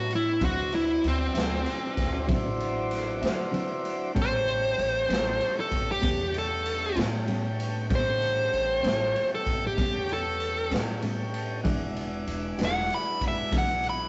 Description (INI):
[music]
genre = slow blues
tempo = 64 BPM (dotted quarters)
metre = 12/8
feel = straight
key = A mixolydian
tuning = A4 = 441 Hz
[part]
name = dark smooth lead guitar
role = melody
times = 0.0-14.1 s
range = C4 to B5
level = -29 LUFS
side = equal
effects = overdrive, slapback echo
[part]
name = tonewheel organ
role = sustained chords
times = 0.0-14.1 s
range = F#3 to G4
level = -37 LUFS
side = equal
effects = slow rotary speaker
[part]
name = upright bass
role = bass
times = 0.0-14.1 s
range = E1 to D3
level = -36 LUFS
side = equal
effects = none
[part]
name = raw garage drum kit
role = drums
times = 0.1-14.0 s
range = kick drum, ride cymbal, snare drum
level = -34 LUFS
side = equal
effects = none
[part]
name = clean electric guitar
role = accompaniment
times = 0.4-13.7 s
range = A2 to F#4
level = -34 LUFS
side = equal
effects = tremolo
[sound]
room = light reverb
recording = rough rehearsal-room recording, warm saturation, nothing above 8.0 kHz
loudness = -28 LUFS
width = mono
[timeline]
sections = 0.0-14.1 A section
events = lead electric guitar solo 0.0-14.1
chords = 0.4 D9; 4.2 A9; 11.6 E9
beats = | 0.41 1.35 2.29 3.22 | 4.16 5.09 6.03 6.97 | 7.90 8.84 9.78 10.71 | 11.65 12.58 13.52